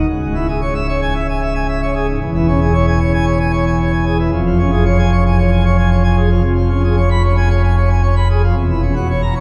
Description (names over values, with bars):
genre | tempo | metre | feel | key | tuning
classical, organ toccata | 113 BPM | 4/4 | straight | unclear | A4 = 440 Hz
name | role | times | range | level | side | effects
pipe organ, plenum | solo | 0.0-9.4 s | C#1 to B5 | -15 LUFS | equal | none
room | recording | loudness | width
wet cathedral reverb, RT60 4.8 s | heard from further back in the room | -15 LUFS | mono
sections
0.0-9.4 A section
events
none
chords
0.1 C#m; 2.2 C#m/E; 4.3 C#/E#; 6.4 C#7/E#; 8.6 F#7/E